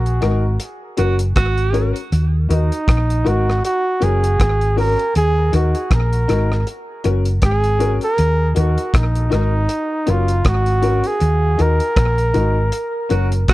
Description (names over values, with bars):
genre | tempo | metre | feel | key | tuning
roots reggae | 79 BPM | 4/4 | swing 57% on 16ths | Eb minor | A4 = 440 Hz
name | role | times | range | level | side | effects
warm flugelhorn | melody | 0.0-13.1 s | Eb4 to Bb4 | -20 LUFS | right 1 dB | tape echo
hollow-body short-scale fingered electric bass | bass | 0.0-13.5 s | Gb1 to Eb2 | -17 LUFS | equal | none
cloth-damped thuddy drum kit | drums | 0.1-13.5 s | hi-hat, kick drum, rim click | -19 LUFS | equal | none
warm upright piano | stabs | 0.2-13.3 s | Db4 to Bb4 | -22 LUFS | left 5 dB | none
breathy tenor saxophone | second line | 1.0-1.9, 13.1-13.5 s | Gb4 | -24 LUFS | right 5 dB | tape echo
room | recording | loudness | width
small room ambience | dry, close 1970s-style studio recording | -15 LUFS | side -17 dB against mid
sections
0.0-13.5 A section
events
band accent 0.0-2.1, 11.2-13.5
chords
0.0 Ebm; 0.6 Gb; 2.1 Ebm; 3.6 Gb; 5.1 Ebm; 6.7 Gb; 8.2 Ebm; 9.7 Gb; 11.2 Ebm; 12.7 Gb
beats
0.60 1.36 | 2.12 2.88 3.63 4.39 | 5.15 5.91 6.67 7.42 | 8.18 8.94 9.70 10.45 | 11.21 11.97 12.73 13.48